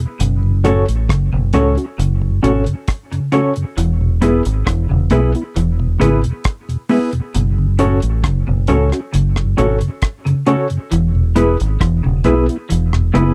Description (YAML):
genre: roots reggae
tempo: 67 BPM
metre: 4/4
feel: straight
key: F# minor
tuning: A4 = 440 Hz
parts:
  - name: mellow tonewheel organ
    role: accompaniment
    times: 0.0-13.2 s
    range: E2 to F#4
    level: -22 LUFS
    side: equal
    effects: chorus vibrato, stopped rotary speaker
  - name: semi-hollow electric guitar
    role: arpeggios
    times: 0.2-13.3 s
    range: A2 to E3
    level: -22 LUFS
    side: equal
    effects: ensemble chorus
  - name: deep dub fingered electric bass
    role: bass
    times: 0.2-13.3 s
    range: E1 to C#2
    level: -18 LUFS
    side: equal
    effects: none
  - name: deep reggae drum kit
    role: drums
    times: 0.2-13.3 s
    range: hi-hat, kick drum, rim click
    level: -24 LUFS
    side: equal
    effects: none
  - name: mellow electric guitar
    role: accompaniment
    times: 0.6-13.3 s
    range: B3 to C#5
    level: -23 LUFS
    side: equal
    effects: dub echo
  - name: reed electric piano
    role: stabs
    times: 0.6-13.3 s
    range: B3 to C#5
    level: -20 LUFS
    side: equal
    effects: fast tremolo
room: little or no reverb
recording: dry, close 1970s-style studio recording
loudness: -16 LUFS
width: mono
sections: 0.0-13.3 A section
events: none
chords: 0.2 F#m; 3.8 E; 7.3 F#m; 10.9 E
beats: | 0.20 1.09 1.99 2.88 | 3.77 4.66 5.56 6.45 | 7.34 8.23 9.13 10.02 | 10.91 11.80 12.70